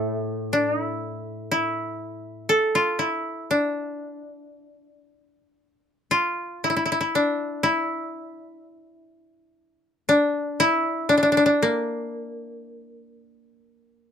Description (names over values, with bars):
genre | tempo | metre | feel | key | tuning
japanese traditional, Japanese chamber music | 56-62 BPM | 2/4 | rubato | D hirajoshi | A4 = 439 Hz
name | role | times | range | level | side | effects
koto | melody | 0.0-14.1 s | Bb3 to A4 | -22 LUFS | left 1 dB | none
koto | accompaniment | 0.0-2.5 s | A2 | -32 LUFS | left 1 dB | none
room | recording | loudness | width
light reverb | close, detailed microphones | -21 LUFS | side -8 dB against mid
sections
0.0-5.6 A section; 5.6-14.1 B section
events
none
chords
none